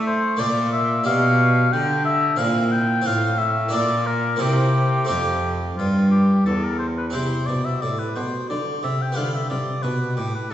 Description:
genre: classical, baroque-style sonata movement with continuo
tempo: 89 BPM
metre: 3/4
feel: straight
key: F major, C major from 7.1 s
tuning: A4 = 440 Hz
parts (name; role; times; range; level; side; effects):
- warm oboe; melody; 0.0-10.5 s; F4 to G5; -23 LUFS; left 2 dB; none
- harpsichord; accompaniment; 0.0-10.5 s; E2 to A4; -26 LUFS; right 1 dB; none
- rich cello; bass; 0.0-10.5 s; E2 to A3; -22 LUFS; equal; none
room: wet recital hall reverb, RT60 1.4 s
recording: recorded in a church or concert hall, nothing above 7.9 kHz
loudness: -18 LUFS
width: side -11 dB against mid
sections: 0.0-7.1 A section; 7.1-10.5 A section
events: none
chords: 0.4 Bb; 1.1 G7/B; 2.4 C7/Bb; 3.1 F/A; 3.7 Bb; 4.4 C7; 5.1 F; 7.1 C; 9.2 G7

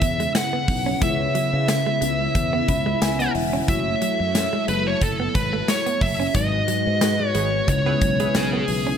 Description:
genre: 1980s-style pop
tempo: 90 BPM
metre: 4/4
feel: swing 55% on 16ths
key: C# minor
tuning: A4 = 440 Hz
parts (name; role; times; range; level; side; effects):
- high-gain lead guitar; melody; 0.0-9.0 s; G#4 to F#5; -24 LUFS; right 1 dB; distortion, digital delay
- mellow tine electric piano; accompaniment; 0.0-9.0 s; G#2 to B5; -26 LUFS; left 5 dB; phaser
- string machine, full ensemble; sustained chords; 0.0-9.0 s; C#3 to B4; -31 LUFS; equal; ensemble chorus
- direct-recorded clean electric guitar; riff; 0.0-9.0 s; E3 to C#4; -30 LUFS; right 6 dB; lush chorus, digital delay
- sustaining fretless electric bass; bass; 0.0-8.9 s; E1 to C#3; -27 LUFS; right 1 dB; analog chorus
- big rock drum kit; drums; 0.0-8.9 s; hi-hat, kick drum, snare drum, tambourine; -25 LUFS; equal; none
- funky polysynth comp; stabs; 7.0-8.7 s; E4 to B4; -31 LUFS; right 5 dB; chorus
room: light reverb, small room ambience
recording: none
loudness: -19 LUFS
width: side -8 dB against mid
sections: 0.0-9.0 A section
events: tine electric piano fill 2.3-3.7; band accent 6.3-9.0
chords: 0.0 C#m7; 3.7 F#m7; 6.3 G#m7; 7.7 C#m7

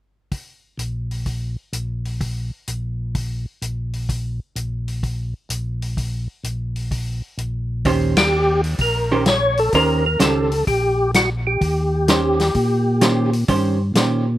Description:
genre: soul jazz organ trio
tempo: 128 BPM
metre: 4/4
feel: swing 68% on 8ths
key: Eb mixolydian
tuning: A4 = 442 Hz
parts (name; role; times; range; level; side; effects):
- vintage drum kit; drums; 0.3-14.1 s; hi-hat, kick drum, ride cymbal, snare drum; -23 LUFS; left 1 dB; none
- mellow tonewheel organ; bass; 0.8-14.4 s; Bb1 to Bb2; -22 LUFS; equal; chorus vibrato, slow rotary speaker
- vintage hollow-body jazz guitar; accompaniment; 7.9-14.2 s; Eb3 to C5; -20 LUFS; right 4 dB; none
- percussive tonewheel organ; melody; 8.2-13.3 s; Gb4 to Db5; -19 LUFS; left 1 dB; slow rotary speaker, chorus vibrato
room: little or no reverb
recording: recorded outdoors, with no room sound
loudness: -18 LUFS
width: side -14 dB against mid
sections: 0.3-7.9 A section; 7.9-14.4 B section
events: band accent 8.1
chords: 0.3 N.C.; 7.9 Eb6

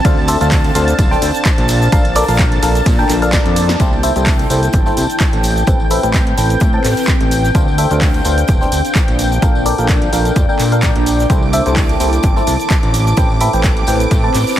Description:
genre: piano house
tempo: 128 BPM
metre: 4/4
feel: swing 54% on 16ths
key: C mixolydian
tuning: A4 = 441 Hz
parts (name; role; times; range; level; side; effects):
- analog string pad; sustained chords; 0.0-14.6 s; G5 to D6; -24 LUFS; equal; ensemble chorus, sidechain pumping
- barking FM electric piano; riff; 0.0-14.4 s; C4 to A5; -19 LUFS; left 1 dB; phaser, sidechain pumping, low-pass filter, dub echo
- fat analog bass; bass; 0.0-14.4 s; D1 to Bb2; -16 LUFS; equal; sidechain pumping
- electronic kick drum; drums; 0.0-14.2 s; none; -14 LUFS; equal; none
- gated 80s drum kit; drums; 0.0-14.6 s; hi-hat, snare drum; -33 LUFS; right 2 dB; none
- punchy analog drum machine; drums; 0.0-14.6 s; handclaps, hi-hat, ride cymbal, shaker, snare drum; -22 LUFS; equal; none
- tambourine; percussion; 0.0-14.6 s; none; -31 LUFS; left 3 dB; none
- deep dark ambient pad; texture; 0.0-14.6 s; Bb3 to A5; -21 LUFS; equal; chorus, built-in reverb, sidechain pumping
room: light reverb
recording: heavily compressed radio sound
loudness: -11 LUFS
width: side -12 dB against mid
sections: 0.0-3.8 A section; 3.8-14.6 B section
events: drop 0.0-3.8; drum fill 3.3-3.8; band accent 3.7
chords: 0.0 Dm7; 1.7 Bbmaj7; 3.8 C6; 5.4 Am9; 7.5 Dm7; 9.2 Bbmaj7; 11.3 C6; 12.9 Am9

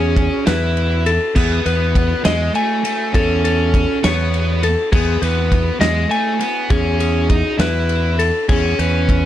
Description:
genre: math rock and midwest emo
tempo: 67 BPM (dotted quarters)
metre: 6/8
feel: straight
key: E major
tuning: A4 = 440 Hz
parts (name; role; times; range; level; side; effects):
- overdriven electric guitar; melody; 0.0-9.3 s; G#3 to E4; -22 LUFS; right 2 dB; none
- clean electric guitar; arpeggios; 0.0-9.3 s; G#4 to G#5; -21 LUFS; left 4 dB; plate reverb
- modern bright fingered electric bass; bass; 0.0-9.3 s; E2; -18 LUFS; equal; none
- loose indie drum kit; drums; 0.2-9.2 s; crash cymbal, kick drum, ride cymbal, snare drum; -20 LUFS; equal; none
room: light reverb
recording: dark, warm production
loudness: -14 LUFS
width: side -12 dB against mid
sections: 0.0-9.3 A section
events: none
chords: 0.0 E6; 1.4 Eadd11; 3.1 B9sus4/E; 4.9 G#m/E; 6.7 E6; 8.5 Amaj9/E (rootless)

